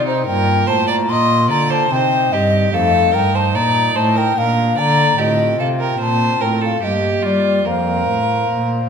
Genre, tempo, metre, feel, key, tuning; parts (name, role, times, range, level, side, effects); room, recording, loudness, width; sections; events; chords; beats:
classical, baroque-style sonata movement with continuo; 73 BPM; 3/4; straight; A4 = 440 Hz
baroque flute; melody; 0.0-8.9 s; C5 to C6; -18 LUFS; left 5 dB
rich violin; second line; 0.0-8.9 s; Eb4 to Eb5; -20 LUFS; right 7 dB
pipe organ, foundations; accompaniment; 0.0-8.9 s; F2 to C5; -23 LUFS; right 2 dB
dark cello; bass; 0.0-8.9 s; F2 to G3; -20 LUFS; right 2 dB
wet recital hall reverb, RT60 1.5 s; minimal, uncompressed stereo recording; -14 LUFS; side -6 dB against mid
0.0-8.9 A section
0.3 Gm7; 1.9 Cm; 2.7 F7; 4.4 Bb; 5.2 F/A; 6.8 Gm; 7.7 Fsus4
| 0.29 1.10 1.91 | 2.73 3.54 4.36 | 5.18 5.99 6.82 | 7.65 8.49